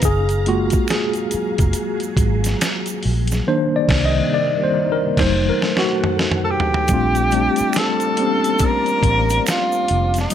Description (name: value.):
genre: R&B, neo-soul.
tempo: 70 BPM.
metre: 4/4.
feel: swing 64% on 16ths.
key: Bb major.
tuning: A4 = 444 Hz.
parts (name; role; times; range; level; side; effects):
tine electric piano; accompaniment; 0.0-10.3 s; Eb3 to Eb5; -20 LUFS; left 1 dB; overdrive, fast stereo tremolo.
soft string machine; sustained chords; 0.0-10.3 s; C3 to Bb5; -27 LUFS; equal; phaser, ensemble chorus.
vintage muted fingered electric bass; bass; 0.0-10.3 s; F1 to C2; -20 LUFS; equal; none.
dusty soul sampler-style drum kit; drums; 0.0-10.3 s; crash cymbal, hi-hat, kick drum, snare drum, toms; -21 LUFS; equal; none.
egg shaker and finger snaps; percussion; 0.0-10.3 s; none; -30 LUFS; right 7 dB; none.
mellow tenor saxophone; melody; 6.4-10.3 s; Eb4 to Bb4; -19 LUFS; equal; none.
room: light reverb.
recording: none.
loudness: -16 LUFS.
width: side -10 dB against mid.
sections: 0.0-6.9 A section; 6.9-10.3 B section.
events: tine electric piano solo 0.0-6.9; band accent 3.5-6.9; drum fill 5.2-6.9.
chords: 0.0 Gbmaj9; 3.5 Cm7; 5.2 F7b9; 6.9 Bbmaj9.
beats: | 0.03 0.89 1.74 2.60 | 3.46 4.32 5.17 6.03 | 6.89 7.74 8.60 9.46 | 10.32.